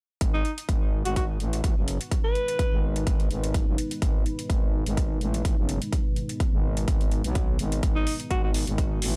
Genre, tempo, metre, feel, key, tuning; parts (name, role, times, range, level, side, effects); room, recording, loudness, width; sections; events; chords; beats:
bass house; 126 BPM; 4/4; swing 54% on 16ths; G# phrygian; A4 = 440 Hz
dark analog pad; sustained chords; 1.8-9.2 s; G#3 to B4; -37 LUFS; equal; chorus, phaser, sidechain pumping
growling FM bass; bass; 0.2-9.2 s; F#1 to B1; -31 LUFS; equal; overdrive, sidechain pumping
electronic hi-hat; drums; 0.2-9.1 s; -38 LUFS; equal; overdrive
electronic kick drum; drums; 0.2-8.9 s; -27 LUFS; equal
breathy alto saxophone; melody; 0.3-2.9, 8.0-8.5 s; D#4 to B4; -34 LUFS; equal; tape echo
little or no reverb; dark, warm production; -26 LUFS; mono
0.2-9.2 A section
0.2 G#m
| 0.21 0.69 1.16 1.64 | 2.12 2.59 3.07 3.54 | 4.02 4.50 4.97 5.45 | 5.92 6.40 6.88 7.35 | 7.83 8.31 8.78